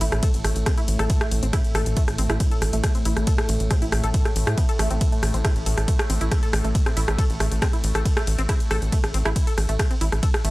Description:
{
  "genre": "driving peak-time techno",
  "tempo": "138 BPM",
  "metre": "4/4",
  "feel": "straight",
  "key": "unclear",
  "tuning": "A4 = 440 Hz",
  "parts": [
    { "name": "tight sequenced synth", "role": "riff", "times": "0.0-10.5 s", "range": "A3 to A4", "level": "-32 LUFS", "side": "equal", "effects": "chorus, sidechain pumping, tape echo" },
    { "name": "tight sequencer bass", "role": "bass", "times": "0.0-10.5 s", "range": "A1 to A2", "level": "-23 LUFS", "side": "equal", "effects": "sidechain pumping" },
    { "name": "analog drone", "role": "drone", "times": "0.0-10.5 s", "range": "A2 to A3", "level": "-31 LUFS", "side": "equal", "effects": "chorus, sidechain pumping" },
    { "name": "punchy analog drum machine", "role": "drums", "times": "0.0-10.5 s", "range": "hi-hat, ride cymbal, rim click", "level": "-27 LUFS", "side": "equal", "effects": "sidechain pumping on hats, sidechain pumping on cymbals" },
    { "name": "electronic kick drum", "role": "drums", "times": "0.2-10.3 s", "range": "none", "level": "-22 LUFS", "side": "equal", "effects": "none" }
  ],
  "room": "little or no reverb",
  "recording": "dry, gritty hardware recording",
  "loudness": "-19 LUFS",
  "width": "side -20 dB against mid",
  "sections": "0.0-10.5 A section",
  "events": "none",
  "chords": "0.0 A5",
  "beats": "0.23 0.66 1.10 | 1.53 1.97 2.40 2.84 | 3.27 3.71 4.14 4.58 | 5.01 5.45 5.88 6.32 | 6.75 7.18 7.62 8.05 | 8.49 8.92 9.36 9.79 | 10.23"
}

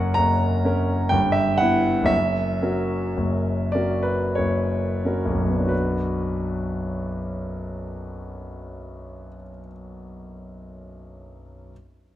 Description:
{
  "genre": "classical, romantic nocturne for solo piano",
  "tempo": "41-64 BPM",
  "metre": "3/4",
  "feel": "rubato",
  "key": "B minor",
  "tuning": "A4 = 440 Hz",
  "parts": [
    { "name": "warm grand piano", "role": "solo", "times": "0.0-11.7 s", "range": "F#1 to A#5", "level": "-22 LUFS", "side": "equal", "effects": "none" }
  ],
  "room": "wet recital hall reverb, RT60 1.7 s",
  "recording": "close, detailed microphones",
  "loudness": "-20 LUFS",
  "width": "side -13 dB against mid",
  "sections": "0.0-5.7 A section; 5.7-9.4 B section",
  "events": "slowing down 0.0-5.7",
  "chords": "0.0 F#; 1.1 Em/G; 2.1 F#7; 5.7 Bm",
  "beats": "0.17 1.13 | 2.10 3.18 4.37 | 5.71 6.96 8.19"
}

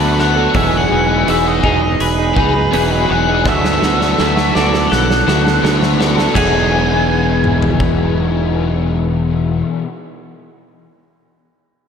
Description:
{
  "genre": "rock, shoegaze and dream pop",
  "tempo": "83 BPM",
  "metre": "4/4",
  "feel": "straight",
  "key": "E major",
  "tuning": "A4 = 440 Hz",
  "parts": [
    { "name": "octave-fuzz lead guitar", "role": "melody", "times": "0.0-9.6 s", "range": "B4 to G#5", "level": "-20 LUFS", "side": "left 1 dB", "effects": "distortion, analog delay" },
    { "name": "twelve-string electric guitar", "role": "arpeggios", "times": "0.0-9.9 s", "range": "F#3 to A4", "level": "-26 LUFS", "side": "left 6 dB", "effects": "none" },
    { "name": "direct-recorded clean electric guitar", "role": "riff", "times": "0.0-9.9 s", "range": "D3 to A4", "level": "-18 LUFS", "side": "right 7 dB", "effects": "reverse reverb" },
    { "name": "overdriven electric guitar", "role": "riff", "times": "0.0-9.9 s", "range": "E2 to G#4", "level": "-18 LUFS", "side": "left 7 dB", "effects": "ensemble chorus" },
    { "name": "growling fingered electric bass", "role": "bass", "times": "0.0-9.6 s", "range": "E1 to D2", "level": "-18 LUFS", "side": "equal", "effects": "overdrive" },
    { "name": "big rock drum kit", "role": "drums", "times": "0.2-8.0 s", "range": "crash cymbal, hi-hat, kick drum, snare drum, toms", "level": "-20 LUFS", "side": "equal", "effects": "none" }
  ],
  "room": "wet lush hall reverb, RT60 2.9 s",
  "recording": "dreamy mix soaked in reverb",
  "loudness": "-12 LUFS",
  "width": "side -7 dB against mid",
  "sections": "0.0-6.3 A section; 6.3-9.2 B section",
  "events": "drum fill 3.4-6.3",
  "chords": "0.0 D6; 0.5 Emaj9; 3.4 D6; 6.3 Emaj9",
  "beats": "| 0.55 1.27 2.00 2.72 | 3.45 4.17 4.90 5.62 | 6.35 7.07 7.80 8.52"
}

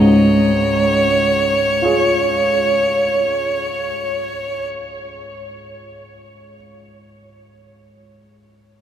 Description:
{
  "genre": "classical, romantic duo for violin and grand piano",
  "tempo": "free time",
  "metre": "none",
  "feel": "none",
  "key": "Db major",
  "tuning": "A4 = 442 Hz",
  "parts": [
    { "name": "clear violin", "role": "melody", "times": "0.0-4.7 s", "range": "Db5", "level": "-18 LUFS", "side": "equal", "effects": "none" },
    { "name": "clear grand piano", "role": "accompaniment", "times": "0.0-8.8 s", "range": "Db2 to Db5", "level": "-17 LUFS", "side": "equal", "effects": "none" }
  ],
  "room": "wet huge ambient reverb, RT60 7.3 s",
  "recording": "in a vast, echoing space",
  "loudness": "-14 LUFS",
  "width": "side -10 dB against mid",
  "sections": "0.0-7.5 A section",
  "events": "none",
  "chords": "0.0 Db",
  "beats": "free time"
}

